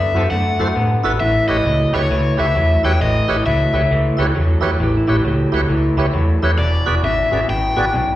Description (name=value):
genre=blues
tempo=134 BPM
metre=4/4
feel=swing 64% on 8ths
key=A mixolydian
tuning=A4 = 438 Hz
part: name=overdriven semi-hollow guitar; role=melody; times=0.0-8.2 s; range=C#5 to G5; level=-20 LUFS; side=left 2 dB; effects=slapback echo
part: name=electric guitar through a small old amp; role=riff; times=0.0-8.2 s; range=E2 to B3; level=-22 LUFS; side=left 1 dB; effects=slapback echo
part: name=vintage muted fingered electric bass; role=bass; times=0.0-8.1 s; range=E1 to A2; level=-18 LUFS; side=equal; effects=none
part: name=tonewheel organ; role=accompaniment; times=0.1-7.9 s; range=E4 to D5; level=-23 LUFS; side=right 3 dB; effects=slow rotary speaker, overdrive, slapback echo
part: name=clean lap steel guitar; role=second line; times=4.2-5.7 s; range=E4 to A4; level=-27 LUFS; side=right 3 dB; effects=slapback echo
room=light reverb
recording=live gig heard through the venue's PA, recital hall reverb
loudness=-14 LUFS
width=side -14 dB against mid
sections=0.0-8.2 A section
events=none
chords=0.0 D7; 1.2 A7; 6.6 E7